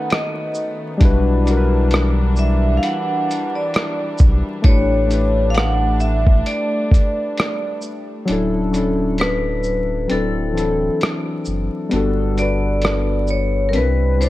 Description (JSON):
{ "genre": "lo-fi hip hop", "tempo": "66 BPM", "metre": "4/4", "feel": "swing 57% on 16ths", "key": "D major", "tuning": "A4 = 440 Hz", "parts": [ { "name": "vibraphone with hard mallets", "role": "melody", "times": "0.0-14.3 s", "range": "A4 to F#5", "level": "-22 LUFS", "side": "equal", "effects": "low-pass filter, tape echo" }, { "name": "soft electric-piano-like synth keys", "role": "accompaniment", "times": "0.0-14.3 s", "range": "E3 to D5", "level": "-22 LUFS", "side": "left 2 dB", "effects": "chorus, cassette tape, low-pass filter" }, { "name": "dark studio string section", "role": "sustained chords", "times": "0.0-8.2 s", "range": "D#3 to D4", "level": "-28 LUFS", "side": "left 1 dB", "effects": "low-pass filter" }, { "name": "lo-fi sampler-style drum kit", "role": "drums", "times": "0.1-14.3 s", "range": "hi-hat, kick drum, rim click, shaker", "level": "-17 LUFS", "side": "equal", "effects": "none" }, { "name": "warm sub bass", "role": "bass", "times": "1.0-14.3 s", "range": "D1 to C2", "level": "-19 LUFS", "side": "equal", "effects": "none" } ], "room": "light reverb, digital ambience", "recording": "dark, warm production, vinyl crackle", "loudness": "-16 LUFS", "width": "side -16 dB against mid", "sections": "0.0-8.3 A section; 8.3-14.3 B section", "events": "kick muted 8.3-14.3", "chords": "0.0 B7; 1.0 Em7/B; 4.6 A7sus4; 8.3 Dmaj9; 10.1 D9; 11.9 Gmaj9; 13.7 Cmaj9" }